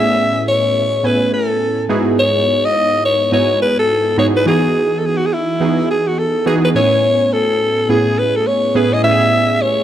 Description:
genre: R&B.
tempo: 105 BPM.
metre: 4/4.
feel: swing 61% on 16ths.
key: unclear.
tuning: A4 = 440 Hz.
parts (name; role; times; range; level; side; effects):
raspy alto saxophone; melody; 0.0-9.8 s; E4 to E5; -15 LUFS; left 1 dB; none.
warm analog keys; accompaniment; 0.0-9.8 s; G#2 to G#5; -16 LUFS; right 2 dB; chorus.
room: light reverb, studio reverb.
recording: none.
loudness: -12 LUFS.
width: side -11 dB against mid.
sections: 0.0-6.7 A section; 6.7-9.8 A section.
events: none.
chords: 0.0 Amaj9; 1.9 Emaj13/G#; 4.5 Emaj7; 6.7 Amaj9.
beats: 0.46 1.03 1.60 | 2.17 2.75 3.32 3.89 | 4.46 5.03 5.60 6.17 | 6.75 7.32 7.89 8.46 | 9.03 9.60.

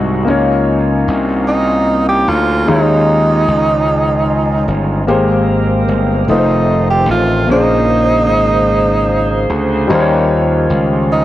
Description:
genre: slow gospel.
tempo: 50 BPM (dotted quarters).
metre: 6/8.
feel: straight.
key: unclear.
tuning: A4 = 440 Hz.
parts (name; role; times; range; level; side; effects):
clear concert grand piano; accompaniment; 0.0-11.2 s; Ab2 to Db5; -16 LUFS; left 3 dB; none.
bright tonewheel organ; sustained chords; 0.0-11.2 s; Db3 to C5; -19 LUFS; right 2 dB; fast rotary speaker.
mellow French horn section; sustained chords; 0.0-11.2 s; F3 to C5; -26 LUFS; left 1 dB; none.
gritty slap bass; bass; 0.0-11.2 s; F1 to Eb2; -16 LUFS; equal; overdrive, tube saturation.
breathy tenor saxophone; melody; 1.5-11.2 s; Eb4 to G4; -14 LUFS; right 2 dB; slapback echo.
room: moderate echo chamber reverb, RT60 1.6 s, small room ambience.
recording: worn, warbling old tape, cassette tape, warbly pitch drift.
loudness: -11 LUFS.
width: side -14 dB against mid.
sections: 0.0-11.2 A section.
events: none.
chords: 0.3 Db69; 2.7 Eb9sus4; 5.1 Abmaj9; 6.3 F7; 7.5 Bbm9; 9.9 Eb9.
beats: | 0.28 1.49 | 2.69 3.89 | 5.09 6.30 | 7.50 8.70 | 9.90 11.10.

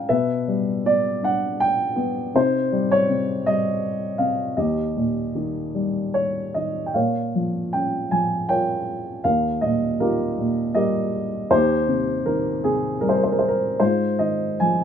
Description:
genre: classical, lyrical solo piano.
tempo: 73-83 BPM.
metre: 3/4.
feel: rubato.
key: Bb dorian.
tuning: A4 = 441 Hz.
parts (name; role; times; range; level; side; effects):
dark baby grand piano; solo; 0.0-14.8 s; Eb2 to Bb5; -20 LUFS; equal; none.
room: light reverb.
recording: none.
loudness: -20 LUFS.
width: side -8 dB against mid.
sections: 0.0-6.9 A section; 6.9-14.8 B section.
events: none.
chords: 0.1 G/B; 2.3 Cm; 4.6 Eb; 6.9 Bbm; 9.2 Ebadd9; 11.5 Cm/Eb; 13.8 Ab6.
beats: | 0.09 0.85 1.60 | 2.34 3.08 3.81 | 4.56 5.34 6.14 | 6.95 7.73 8.49 | 9.24 9.99 10.74 | 11.50 12.26 13.02 | 13.80 14.61.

